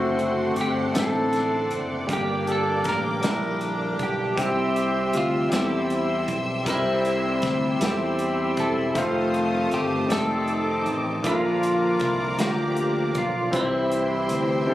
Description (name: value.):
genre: slow gospel.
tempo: 52 BPM (dotted quarters).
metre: 6/8.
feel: straight.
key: unclear.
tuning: A4 = 440 Hz.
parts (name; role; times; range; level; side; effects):
clean electric guitar; melody; 0.0-14.7 s; E4 to Bb4; -31 LUFS; right 1 dB; tape echo.
mellow horn section; melody; 0.0-14.7 s; G3 to E5; -26 LUFS; left 1 dB; none.
clear baby grand piano; accompaniment; 0.0-14.7 s; G2 to D5; -28 LUFS; left 1 dB; none.
clear studio string section; sustained chords; 0.0-14.7 s; Eb4 to E6; -33 LUFS; left 1 dB; none.
tonewheel organ; sustained chords; 0.0-14.7 s; D3 to F#5; -31 LUFS; right 2 dB; slow rotary speaker, overdrive, chorus vibrato.
modern bright fingered electric bass; bass; 0.0-14.7 s; E1 to E2; -32 LUFS; equal; none.
natural country drum kit; drums; 0.2-14.5 s; hi-hat, kick drum, snare drum; -30 LUFS; equal; none.
room: light reverb, studio ambience.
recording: recorded on a phone in the room, club reverb, compression.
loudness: -21 LUFS.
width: side -14 dB against mid.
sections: 0.0-14.7 A section.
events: none.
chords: 0.0 D7/F#; 2.1 Gm; 4.4 C; 9.0 F7; 10.1 F13; 11.2 Bb; 13.5 C.